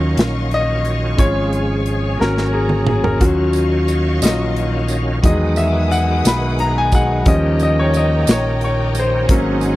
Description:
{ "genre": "slow gospel", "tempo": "59 BPM (dotted quarters)", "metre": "6/8", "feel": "straight", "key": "unclear", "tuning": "A4 = 438 Hz", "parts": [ { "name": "clear concert grand piano", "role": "accompaniment", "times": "0.0-9.8 s", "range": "D#3 to B5", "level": "-18 LUFS", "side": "left 2 dB", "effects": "none" }, { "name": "bright tonewheel organ", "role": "sustained chords", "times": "0.0-9.8 s", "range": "Eb3 to F5", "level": "-24 LUFS", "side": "right 2 dB", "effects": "fast rotary speaker, overdrive, chorus vibrato" }, { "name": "warm studio string section", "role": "sustained chords", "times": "0.0-9.8 s", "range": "B4 to D#6", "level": "-29 LUFS", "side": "left 2 dB", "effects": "none" }, { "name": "fingered electric bass", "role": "bass", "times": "0.0-9.8 s", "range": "Ab1 to E2", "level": "-19 LUFS", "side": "equal", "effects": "none" }, { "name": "modern studio drum kit", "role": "drums", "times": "0.2-9.8 s", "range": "hi-hat, kick drum, snare drum, toms", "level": "-16 LUFS", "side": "equal", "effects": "none" }, { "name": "tambourine", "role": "percussion", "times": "3.5-9.8 s", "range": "none", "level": "-29 LUFS", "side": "right 14 dB", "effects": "none" } ], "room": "little or no reverb", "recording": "dry, close 1970s-style studio recording", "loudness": "-14 LUFS", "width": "side -16 dB against mid", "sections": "0.0-9.8 A section", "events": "grand piano solo 0.0-9.8; drum fill 2.2-3.2", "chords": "0.0 Ebm9; 1.2 Db/Ab; 2.2 Ab9sus4; 3.2 Ebm9; 5.2 Emaj9; 7.3 Eb7", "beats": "0.18 | 1.19 2.20 | 3.21 4.23 | 5.24 6.25 | 7.26 8.28 | 9.29" }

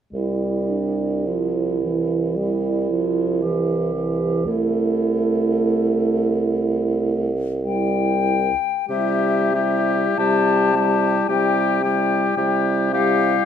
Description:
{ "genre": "classical, slow romantic movement for wind quintet", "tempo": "44-59 BPM", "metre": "4/4", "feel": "rubato", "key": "C major", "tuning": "A4 = 445 Hz", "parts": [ { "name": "dark clarinet", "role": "accompaniment", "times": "0.1-13.5 s", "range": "D4 to G4", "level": "-25 LUFS", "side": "right 10 dB", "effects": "none" }, { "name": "mellow French horn", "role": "accompaniment", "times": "0.1-13.5 s", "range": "E3 to A3", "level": "-24 LUFS", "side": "left 1 dB", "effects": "none" }, { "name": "mellow bassoon", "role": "bass", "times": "0.1-13.3 s", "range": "C2 to C3", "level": "-24 LUFS", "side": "right 2 dB", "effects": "none" }, { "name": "concert flute", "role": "melody", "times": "7.7-13.5 s", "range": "E5 to A5", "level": "-22 LUFS", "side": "left 10 dB", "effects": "none" }, { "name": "warm oboe", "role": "second line", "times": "8.9-13.5 s", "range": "G4", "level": "-22 LUFS", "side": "left 6 dB", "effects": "none" } ], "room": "moderate recital hall reverb, RT60 1.6 s", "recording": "close, detailed microphones", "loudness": "-18 LUFS", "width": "side -8 dB against mid", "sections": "0.1-8.9 A section; 8.9-13.5 B section", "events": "none", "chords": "0.1 C", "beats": "| 0.14 1.26 2.37 3.42 | 4.46 5.48 6.53 7.66 | 8.90 10.18 11.29 12.38" }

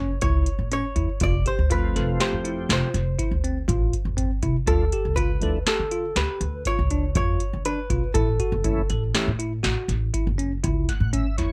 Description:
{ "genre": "progressive instrumental, band music in an uneven meter", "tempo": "121 BPM", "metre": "7/4", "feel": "straight", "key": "unclear", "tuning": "A4 = 440 Hz", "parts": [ { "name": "vintage hollow-body jazz guitar", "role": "melody", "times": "0.0-11.1 s", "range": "A4 to D5", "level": "-32 LUFS", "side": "equal", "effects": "delay" }, { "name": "bell-like tine electric piano", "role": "arpeggios", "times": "0.0-11.5 s", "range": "C4 to A4", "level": "-32 LUFS", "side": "equal", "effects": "none" }, { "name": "upright bass", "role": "bass", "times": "0.0-11.5 s", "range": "F1 to D3", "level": "-27 LUFS", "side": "equal", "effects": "none" }, { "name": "booming analog drum machine", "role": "drums", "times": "0.2-11.5 s", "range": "hi-hat, kick drum, snare drum", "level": "-28 LUFS", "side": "equal", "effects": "none" }, { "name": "tonewheel organ", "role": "accompaniment", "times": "1.7-11.5 s", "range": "E3 to F#5", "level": "-32 LUFS", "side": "equal", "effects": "chorus vibrato, slow rotary speaker" } ], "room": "light reverb", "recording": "none", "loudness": "-24 LUFS", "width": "mono", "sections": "0.0-11.5 A section", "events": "tonewheel organ fill 10.6-11.5", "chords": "0.0 A; 1.2 F; 4.7 Dm; 8.1 A", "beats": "0.22 0.71 | 1.21 1.71 2.20 2.69 3.19 3.69 4.18 | 4.68 5.17 5.67 6.16 6.66 7.16 7.65 | 8.15 8.64 9.14 9.64 10.14 10.63 11.13" }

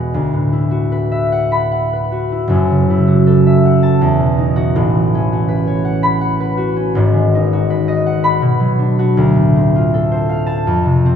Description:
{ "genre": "classical, solo harp piece", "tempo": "75-83 BPM", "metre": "3/4", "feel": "rubato", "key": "unclear", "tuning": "A4 = 440 Hz", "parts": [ { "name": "concert harp", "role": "solo", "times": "0.0-11.2 s", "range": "E1 to B5", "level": "-12 LUFS", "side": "equal", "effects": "none" } ], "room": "wet church reverb, RT60 3.6 s", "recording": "minimal, uncompressed stereo recording", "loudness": "-12 LUFS", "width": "side -8 dB against mid", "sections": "0.0-11.2 A section", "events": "none", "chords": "0.1 D69; 2.5 F#m7; 4.0 Esus2; 4.8 A69; 7.0 G#m7; 8.4 Bm; 9.2 Dm7", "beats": "| 0.14 0.92 1.72 | 2.50 3.26 4.01 | 4.75 5.50 6.23 | 6.97 7.70 8.43 | 9.17 9.92 10.66" }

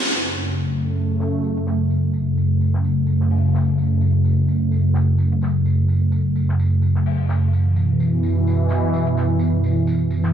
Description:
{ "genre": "bass house", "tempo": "128 BPM", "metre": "4/4", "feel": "swing 56% on 16ths", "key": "F# minor", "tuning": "A4 = 442 Hz", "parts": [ { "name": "sweeping resonant pad", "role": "sustained chords", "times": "0.0-10.3 s", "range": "F#2 to A3", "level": "-17 LUFS", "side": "equal", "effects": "chorus" }, { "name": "damped 70s drum kit", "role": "drums", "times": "0.0-10.3 s", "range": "hi-hat, snare drum, tambourine", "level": "-39 LUFS", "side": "left 3 dB", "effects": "high-pass filter on hats, low-pass filter on hats, high-pass filter on snare, low-pass filter on snare, high-pass filter on perc, low-pass filter on perc, high-pass filter on room, low-pass filter on room" } ], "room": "moderate lush hall reverb, RT60 1.9 s, small room ambience", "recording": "dense, heavily limited modern master", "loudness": "-17 LUFS", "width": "side -9 dB against mid", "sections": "0.0-10.3 A section", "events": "none", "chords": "0.0 F#m", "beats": "| 0.03 0.50 0.97 1.44 | 1.90 2.37 2.84 3.31 | 3.78 4.25 4.72 5.18 | 5.65 6.12 6.59 7.06 | 7.53 8.00 8.47 8.94 | 9.40 9.87" }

